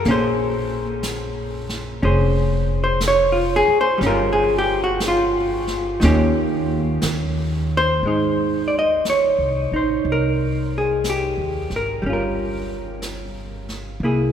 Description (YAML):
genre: jazz ballad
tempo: 60 BPM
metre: 4/4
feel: swing 67% on 8ths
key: Ab major from 8.0 s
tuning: A4 = 440 Hz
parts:
  - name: vintage hollow-body jazz guitar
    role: accompaniment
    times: 0.0-14.3 s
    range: Eb3 to Eb5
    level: -19 LUFS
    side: equal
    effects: none
  - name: jazz brush drum kit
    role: drums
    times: 0.0-14.3 s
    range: brushed snare drum, hi-hat, snare drum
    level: -32 LUFS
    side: right 1 dB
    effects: none
  - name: upright bass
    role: bass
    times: 0.1-14.3 s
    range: F1 to Eb2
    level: -24 LUFS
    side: equal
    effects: none
room: wet cathedral reverb, RT60 6.8 s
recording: recorded in a church or concert hall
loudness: -18 LUFS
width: side -8 dB against mid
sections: 0.0-8.0 A section; 8.0-14.3 B section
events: none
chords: 0.1 Bbm9; 4.0 Gm7b5; 6.0 Eb7; 8.0 Ab; 12.0 Gm7b5